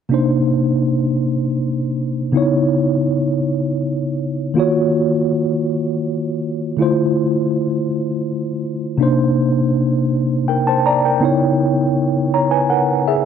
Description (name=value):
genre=R&B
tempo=54 BPM (dotted quarters)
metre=6/8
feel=straight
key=unclear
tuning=A4 = 440 Hz
part: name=mellow tine electric piano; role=solo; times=0.1-13.3 s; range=C3 to Bb5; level=-15 LUFS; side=equal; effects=medium stereo tremolo
room=light reverb, digital ambience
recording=dark, warm production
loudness=-15 LUFS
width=side -8 dB against mid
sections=0.1-9.0 A section; 9.0-13.3 B section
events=none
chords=0.1 Cm9; 2.3 Dbm9; 4.6 Ebm9; 6.8 Dm9; 9.0 Cm9; 11.2 Dbm9